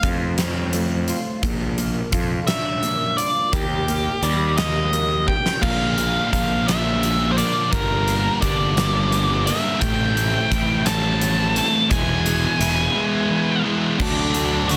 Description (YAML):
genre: quiet-loud alternative rock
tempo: 57 BPM (dotted quarters)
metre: 6/8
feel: straight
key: unclear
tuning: A4 = 439 Hz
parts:
  - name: octave-fuzz lead guitar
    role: melody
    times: 0.0-14.8 s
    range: D4 to A5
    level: -25 LUFS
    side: equal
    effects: distortion, slapback echo
  - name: mellow electric guitar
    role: arpeggios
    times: 0.0-14.8 s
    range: E2 to G4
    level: -31 LUFS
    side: equal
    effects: ensemble chorus
  - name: fuzz picked electric bass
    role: bass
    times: 0.0-14.8 s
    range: E1 to F2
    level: -26 LUFS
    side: equal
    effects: overdrive
  - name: huge arena drum kit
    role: drums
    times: 0.0-14.8 s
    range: crash cymbal, hi-hat, kick drum, snare drum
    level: -27 LUFS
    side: equal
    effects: none
  - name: thick fuzz guitar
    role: riff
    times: 5.6-14.8 s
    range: G2 to F#4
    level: -26 LUFS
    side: equal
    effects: distortion
room: little or no reverb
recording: dense, heavily limited modern master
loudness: -20 LUFS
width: mono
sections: 0.0-5.6 A section; 5.6-14.0 B section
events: drum fill 5.3-5.6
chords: 0.0 F; 1.4 Bb; 3.5 Eb; 5.6 Bb; 7.7 Gm; 9.8 Am; 11.9 E; 14.0 D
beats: 0.38 | 1.43 2.48 | 3.53 4.58 | 5.63 6.67 | 7.72 8.77 | 9.81 10.86 | 11.91 12.95 | 14.00